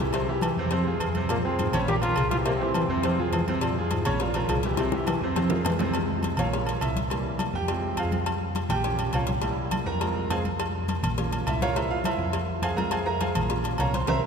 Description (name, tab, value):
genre	latin, salsa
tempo	206 BPM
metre	4/4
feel	straight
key	F harmonic minor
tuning	A4 = 442 Hz
part	bright grand piano	accompaniment	0.0-14.2 s	C3 to C6	-29 LUFS	right 2 dB	none
part	hollow-body short-scale fingered electric bass	bass	0.0-14.2 s	Bb1 to F2	-30 LUFS	equal	none
part	dark bass clarinet	second line	0.1-5.8 s	Ab2 to F3	-30 LUFS	left 1 dB	none
part	agogo bells and timbales	percussion	0.1-14.1 s	none	-33 LUFS	right 1 dB	none
part	congas	percussion	0.1-14.2 s	none	-34 LUFS	left 1 dB	none
part	cowbell and bongos	percussion	0.1-14.1 s	none	-34 LUFS	left 5 dB	none
part	clear trombone	melody	1.3-3.4 s	Bb3 to G4	-31 LUFS	equal	none
room	wet cathedral reverb, RT60 5.0 s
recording	recorded in a church or concert hall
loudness	-24 LUFS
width	side -6 dB against mid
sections	0.0-5.9 A section; 5.9-14.3 B section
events	drum fill 4.8-5.9, 14.1; grand piano solo 5.9-14.3; band accent 14.1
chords	0.1 C; 0.7 Fm; 1.9 Bbm; 2.5 C; 3.0 Fm; 4.2 Bbm; 4.8 C; 5.4 Fm; 6.5 Bbm; 7.1 C7; 7.7 Fm; 8.8 Bbm; 9.4 C7; 10.0 Fm; 11.2 Bbm; 11.8 C7; 12.3 Fm; 13.5 Bbm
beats	| 0.13 0.42 0.72 1.01 | 1.30 1.59 1.88 2.17 | 2.46 2.75 3.04 3.33 | 3.62 3.91 4.20 4.49 | 4.78 5.07 5.36 5.65 | 5.94 6.23 6.52 6.82 | 7.11 7.40 7.69 7.98 | 8.27 8.56 8.85 9.14 | 9.43 9.72 10.01 10.30 | 10.59 10.88 11.18 11.47 | 11.76 12.05 12.34 12.63 | 12.92 13.21 13.50 13.79 | 14.08